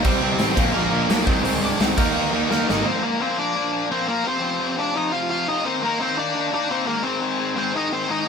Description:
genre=punk rock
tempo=172 BPM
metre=4/4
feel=straight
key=unclear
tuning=A4 = 438 Hz
part: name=smooth overdriven lead guitar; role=melody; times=0.0-8.3 s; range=Bb3 to F5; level=-24 LUFS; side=right 1 dB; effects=none
part: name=cranked stack guitar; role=riff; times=0.0-2.9 s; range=Ab2 to Eb4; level=-26 LUFS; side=right 8 dB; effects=overdrive
part: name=distorted electric guitar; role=riff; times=0.0-2.8 s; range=Ab2 to Eb4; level=-27 LUFS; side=equal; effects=none
part: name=overdriven semi-hollow guitar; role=riff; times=0.0-8.3 s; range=F2 to Eb4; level=-25 LUFS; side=left 8 dB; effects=none
part: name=big rock drum kit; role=drums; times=0.0-2.8 s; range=crash cymbal, hi-hat, kick drum, snare drum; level=-23 LUFS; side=equal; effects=none
part: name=fuzz picked electric bass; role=bass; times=0.1-2.8 s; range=Ab1 to Eb2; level=-26 LUFS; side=equal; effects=overdrive
room=moderate stone room reverb, RT60 1.0 s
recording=band playing live in one room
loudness=-19 LUFS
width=side -6 dB against mid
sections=0.0-2.9 A section; 2.9-8.3 B section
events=drum fill 2.5-2.9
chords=0.1 C5; 0.6 Bb5; 1.3 Ab/C; 2.0 Eb5; 2.9 Bb; 4.2 F5; 5.6 Eb5; 6.9 Ab

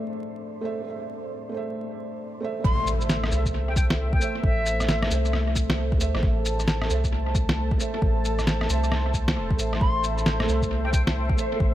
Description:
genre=future garage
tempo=134 BPM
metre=4/4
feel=swing 63% on 16ths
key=A minor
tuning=A4 = 442 Hz
part: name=felt-muted upright piano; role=accompaniment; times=0.0-11.7 s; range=A3 to E5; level=-32 LUFS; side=right 3 dB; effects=sidechain pumping, analog delay
part: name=dark analog pad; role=sustained chords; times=0.0-11.7 s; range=A3 to A5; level=-32 LUFS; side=left 1 dB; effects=chorus, sidechain pumping
part: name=wind-like tuned noise texture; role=texture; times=0.0-2.7, 10.6-11.7 s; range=C5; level=-40 LUFS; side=left 2 dB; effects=built-in reverb
part: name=silver concert flute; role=melody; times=2.6-5.1, 9.8-11.0 s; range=E5 to C6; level=-30 LUFS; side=left 1 dB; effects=analog delay
part: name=soft dub sub bass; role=bass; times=2.6-11.7 s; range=E1 to D2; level=-26 LUFS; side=equal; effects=tube saturation
part: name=electronic kick drum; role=drums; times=2.6-11.7 s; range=none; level=-25 LUFS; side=equal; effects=none
part: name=impact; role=sound effects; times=2.6-4.4 s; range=none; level=-34 LUFS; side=equal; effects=none
part: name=electronic shaker, snare drum and rim click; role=drums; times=2.9-11.5 s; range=none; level=-28 LUFS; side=equal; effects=analog delay
room=little or no reverb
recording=echo-heavy mix, vinyl crackle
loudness=-22 LUFS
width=side -13 dB against mid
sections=0.0-2.6 A section; 2.6-11.7 B section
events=impact 2.6-4.4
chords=0.0 Am

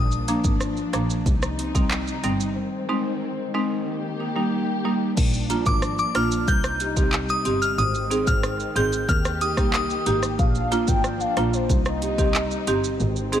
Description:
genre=dancehall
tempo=92 BPM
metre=4/4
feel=straight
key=unclear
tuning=A4 = 440 Hz
part: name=dark studio string section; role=sustained chords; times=0.0-13.4 s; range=C3 to G4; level=-31 LUFS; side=left 2 dB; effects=sidechain pumping
part: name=warm double bass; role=bass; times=0.0-13.4 s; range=G1 to Eb2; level=-27 LUFS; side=equal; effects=none
part: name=afro-pop drum kit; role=drums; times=0.1-13.4 s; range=crash cymbal, handclaps, hi-hat, kick drum, rim click, shaker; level=-25 LUFS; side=equal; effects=none
part: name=buzzing marimba with medium hard mallets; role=accompaniment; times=0.3-13.4 s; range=F3 to Ab4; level=-25 LUFS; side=right 1 dB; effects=none
part: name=glassy synth bell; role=melody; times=5.7-10.2 s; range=D6 to G6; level=-26 LUFS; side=left 1 dB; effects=chorus, ping-pong delay
part: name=warm velvety synth lead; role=second line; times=10.4-13.2 s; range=C5 to G5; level=-28 LUFS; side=left 2 dB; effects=chorus, ping-pong delay
room=light reverb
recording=none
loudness=-20 LUFS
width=side -10 dB against mid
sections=0.0-5.2 A section; 5.2-13.4 B section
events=break 2.6-5.2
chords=0.0 Bb; 1.3 Cm; 2.6 Ab; 3.9 Eb; 5.2 Bb; 6.5 Cm; 7.8 Ab; 9.1 Eb; 10.4 Bb; 11.7 Cm

